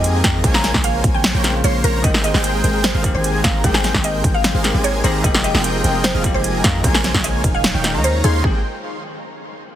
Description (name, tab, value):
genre	future bass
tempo	150 BPM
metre	4/4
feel	half-time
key	Ab major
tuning	A4 = 440 Hz
part	mallet-like synth pluck	melody	0.0-8.6 s	Ab4 to Bb5	-25 LUFS	right 1 dB	wide subtle chorus, sidechain pumping, digital delay
part	bell-like tine electric piano	accompaniment	0.0-8.6 s	Db3 to Bb4	-26 LUFS	left 3 dB	sidechain pumping, tape echo
part	airy dreamy lead	arpeggios	0.0-8.6 s	F5 to C6	-29 LUFS	equal	chorus, sidechain pumping, tape echo
part	supersaw chords	riff	0.0-8.6 s	Eb3 to C6	-24 LUFS	equal	sidechain pumping, tape echo
part	warm 808-style bass	bass	0.0-8.6 s	Eb1 to F2	-20 LUFS	equal	sidechain pumping
part	big-room dance drum kit	drums	0.0-8.3 s	hi-hat, snare drum	-19 LUFS	equal	small room ambience
part	electronic kick drum	drums	0.2-8.5 s	none	-20 LUFS	equal	small room ambience
room	digital ambience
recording	heavily compressed radio sound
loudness	-14 LUFS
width	side -11 dB against mid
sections	0.0-8.4 A section; 8.4-9.8 B section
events	drop 0.0-8.4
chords	0.4 Bbm9; 2.0 Abmaj9; 5.2 Fm11; 6.8 Bbm9; 7.6 Eb9sus4; 8.4 Abmaj9